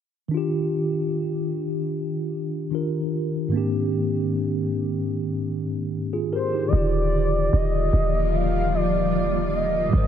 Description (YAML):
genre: contemporary R&B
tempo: 75 BPM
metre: 4/4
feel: straight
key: Eb major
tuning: A4 = 441 Hz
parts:
  - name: mellow tine electric piano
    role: accompaniment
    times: 0.3-10.1 s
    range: Ab2 to C5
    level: -24 LUFS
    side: equal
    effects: medium stereo tremolo
  - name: gliding portamento lead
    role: melody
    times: 6.3-10.1 s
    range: C5 to F5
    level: -25 LUFS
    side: equal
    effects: chorus, tape echo
  - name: granular cloud pad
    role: sustained chords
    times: 7.8-10.1 s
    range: D3 to F4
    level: -27 LUFS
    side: equal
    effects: built-in reverb, wide subtle chorus
  - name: warm 808-style bass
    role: bass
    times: 6.7-10.1 s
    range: Eb1 to Ab1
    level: -23 LUFS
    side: equal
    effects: none
room: moderate huge ambient reverb, RT60 6.9 s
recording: dreamy mix soaked in reverb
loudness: -22 LUFS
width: side -9 dB against mid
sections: 0.3-6.7 A section; 6.7-10.1 B section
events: none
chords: 0.3 Ebmaj9; 3.5 Abmaj9#11; 6.7 Ebmaj9